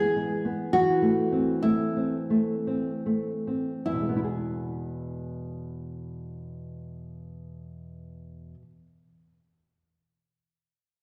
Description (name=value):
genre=romantic duo for nylon-string guitar and classical guitar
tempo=47-70 BPM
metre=3/4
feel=rubato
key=E major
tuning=A4 = 440 Hz
part: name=nylon-string guitar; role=melody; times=0.0-8.5 s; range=E4 to G#4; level=-29 LUFS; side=equal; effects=none
part: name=nylon-string guitar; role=accompaniment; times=0.0-8.9 s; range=E2 to G#4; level=-31 LUFS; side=equal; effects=none
room=wet concert hall reverb, RT60 2.0 s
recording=recorded in a church or concert hall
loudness=-27 LUFS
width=mono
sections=0.0-3.9 A section; 3.9-7.2 B section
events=slowing down 0.0-3.9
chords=0.0 E; 0.7 Am/E; 3.9 E